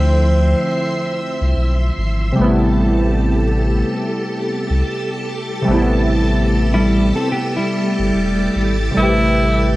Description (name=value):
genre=lo-fi hip hop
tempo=73 BPM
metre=4/4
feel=swing 62% on 16ths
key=A minor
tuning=A4 = 440 Hz
part: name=breathy tenor saxophone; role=melody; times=0.0-2.0, 9.0-9.7 s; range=C4 to E4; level=-20 LUFS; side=equal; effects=tape echo
part: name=warbly lo-fi synth keys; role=accompaniment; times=0.0-9.8 s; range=C3 to B4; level=-19 LUFS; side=equal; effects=chorus, cassette tape
part: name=string machine, full ensemble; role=sustained chords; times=0.0-9.8 s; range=F3 to C6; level=-24 LUFS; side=equal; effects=ensemble chorus
part: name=warm sub bass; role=bass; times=0.0-9.8 s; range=E1 to D2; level=-17 LUFS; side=equal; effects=none
part: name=clean electric guitar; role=second line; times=6.7-8.8 s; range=G3 to A4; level=-19 LUFS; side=left 1 dB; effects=tremolo, tape echo
room=light reverb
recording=vinyl crackle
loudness=-14 LUFS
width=side -17 dB against mid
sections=0.0-9.8 A section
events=none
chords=0.0 Dm9; 2.4 Am9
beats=0.74 1.56 | 2.38 3.20 4.03 4.85 | 5.67 6.49 7.31 8.14 | 8.96